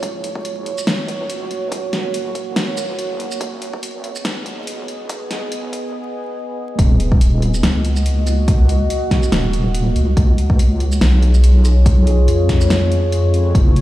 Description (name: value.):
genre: deep dubstep.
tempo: 142 BPM.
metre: 4/4.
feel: swing 56% on 16ths, half-time.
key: Eb minor.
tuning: A4 = 440 Hz.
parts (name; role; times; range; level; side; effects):
deep dark ambient pad; sustained chords; 0.0-13.8 s; Ab3 to Eb5; -23 LUFS; equal; chorus, built-in reverb, vintage 12-bit sampler grit.
deep soft wobble bass; bass; 0.0-13.8 s; Eb1 to F2; -15 LUFS; equal; chorus, high-pass filter.
deep house drum kit; drums; 0.0-13.8 s; hi-hat, shaker, snare drum; -23 LUFS; equal; none.
electronic kick drum; drums; 0.0-13.6 s; none; -15 LUFS; equal; high-pass filter on kick, high-pass filter on room.
room: light reverb.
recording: played on a big sound system in a bare room, large studio reverb, vinyl crackle, high-pass filter.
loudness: -14 LUFS.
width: side -16 dB against mid.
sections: 0.0-6.8 A section; 6.8-13.8 B section.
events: build-up 0.0-6.8; drop 6.8-13.8.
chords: 0.0 Gb; 3.4 Abm; 6.8 Ebm; 10.2 Db.